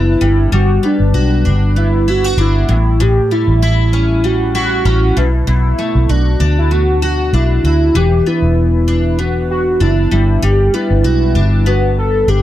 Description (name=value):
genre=indie pop, bedroom pop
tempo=97 BPM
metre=4/4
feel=swing 55% on 16ths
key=G lydian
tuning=A4 = 443 Hz
part: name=warm velvety synth lead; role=melody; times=0.0-12.4 s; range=D4 to A4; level=-16 LUFS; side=right 1 dB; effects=lush chorus, slapback echo
part: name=picked steel-string acoustic guitar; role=accompaniment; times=0.0-12.4 s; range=A2 to F#4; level=-18 LUFS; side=left 2 dB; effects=analog chorus, warbly pitch drift
part: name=vintage muted fingered electric bass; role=bass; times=0.0-12.4 s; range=E1 to D2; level=-13 LUFS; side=equal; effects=none
room=small room ambience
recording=none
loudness=-11 LUFS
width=side -13 dB against mid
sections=0.0-12.4 A section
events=none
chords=0.2 Gmaj7; 2.7 A7; 5.2 Bm7; 7.9 E5; 10.1 Gmaj7